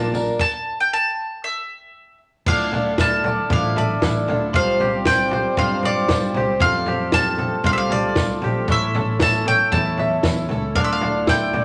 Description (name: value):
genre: indie folk with a building arrangement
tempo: 116 BPM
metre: 4/4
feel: straight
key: D minor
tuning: A4 = 442 Hz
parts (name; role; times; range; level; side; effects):
- mandolin; melody; 0.0-11.6 s; D5 to A5; -24 LUFS; equal; none
- picked twelve-string acoustic guitar; accompaniment; 0.0-11.6 s; A2 to C5; -28 LUFS; equal; none
- bluegrass banjo; arpeggios; 0.0-11.6 s; D4 to F5; -31 LUFS; equal; none
- fingered electric bass; bass; 0.0-11.6 s; A1 to G2; -29 LUFS; equal; none
- compact cocktail drum kit; drums; 0.1-11.6 s; crash cymbal, kick drum, snare drum, toms; -25 LUFS; equal; none
- tambourine; percussion; 0.1-11.4 s; none; -40 LUFS; equal; none
- glockenspiel with brass mallets; second line; 2.5-11.6 s; G5 to F6; -30 LUFS; equal; none
- pedal harmonium; sustained chords; 2.5-11.6 s; D3 to A4; -32 LUFS; equal; none
room: wet large studio reverb, RT60 1.0 s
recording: none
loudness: -20 LUFS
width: mono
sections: 0.0-2.5 A section; 2.5-11.6 B section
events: stop 0.4-2.5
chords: 0.4 N.C.; 2.5 Dmadd9; 4.5 Csus4; 6.6 Fadd9; 8.7 A; 10.8 Dmadd9